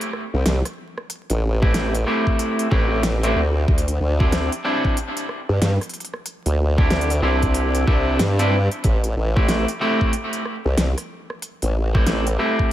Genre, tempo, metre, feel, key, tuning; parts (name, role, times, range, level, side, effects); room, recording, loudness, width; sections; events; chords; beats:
glitch hop; 93 BPM; 4/4; swing 62% on 16ths; A minor; A4 = 442 Hz
pop drum kit; drums; 0.0-12.6 s; hi-hat, rim click, snare drum; -26 LUFS; equal; studio ambience
formant-sweep wobble bass; bass; 0.3-12.4 s; A1 to G2; -20 LUFS; equal; chorus, tube saturation
electric guitar at the edge of break-up; stabs; 1.6-12.7 s; A3 to G4; -23 LUFS; equal; spring reverb, sidechain pumping, digital delay
electronic kick drum; drums; 1.6-12.7 s; -19 LUFS; equal; studio ambience
digital ambience; vinyl crackle; -18 LUFS; side -13 dB against mid
0.0-12.7 A section
0.0 Am7; 3.7 D9sus4; 8.8 Am7
0.46 | 1.10 1.75 2.39 3.04 | 3.68 4.33 4.97 5.62 | 6.26 6.91 7.55 8.20 | 8.84 9.49 10.13 10.78 | 11.43 12.07 12.71